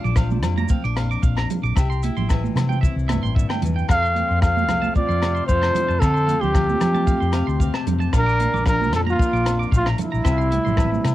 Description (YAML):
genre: highlife guitar band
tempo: 113 BPM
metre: 4/4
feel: swing 53% on 16ths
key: F major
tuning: A4 = 439 Hz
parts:
  - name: picked steel-string acoustic guitar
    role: accompaniment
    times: 0.0-11.1 s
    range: F2 to A4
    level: -28 LUFS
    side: left 6 dB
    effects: cassette tape
  - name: twangy electric guitar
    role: arpeggios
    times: 0.0-10.9 s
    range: E5 to D6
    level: -32 LUFS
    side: right 9 dB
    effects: cassette tape, tape echo
  - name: hollow-body short-scale fingered electric bass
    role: bass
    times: 0.0-11.1 s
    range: A1 to F3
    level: -22 LUFS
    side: equal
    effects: none
  - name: congas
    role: percussion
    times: 0.0-11.0 s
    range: none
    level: -28 LUFS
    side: right 8 dB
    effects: none
  - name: maracas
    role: percussion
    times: 0.1-11.1 s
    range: none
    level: -44 LUFS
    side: right 10 dB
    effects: none
  - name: compact cocktail drum kit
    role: drums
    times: 0.2-11.1 s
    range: hi-hat, kick drum, rim click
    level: -22 LUFS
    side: equal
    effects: cassette tape
  - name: agogo bells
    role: percussion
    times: 0.2-11.1 s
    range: none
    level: -35 LUFS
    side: left 12 dB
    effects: none
  - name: breathy trumpet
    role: melody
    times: 3.9-11.1 s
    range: E4 to F5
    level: -22 LUFS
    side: equal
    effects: cassette tape, tape echo
  - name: reedy wooden-headed alto flute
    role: second line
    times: 3.9-11.1 s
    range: G3 to A4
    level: -31 LUFS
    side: right 7 dB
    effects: cassette tape
room: light reverb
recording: home recording on cassette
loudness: -18 LUFS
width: side -14 dB against mid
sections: 0.0-11.1 A section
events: none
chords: 0.0 Bb; 1.8 C; 3.9 F; 8.1 Bb; 10.3 C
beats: 0.17 0.70 1.24 | 1.77 2.30 2.83 3.36 | 3.89 4.42 4.95 5.49 | 6.02 6.55 7.08 7.61 | 8.14 8.67 9.20 9.73 | 10.26 10.79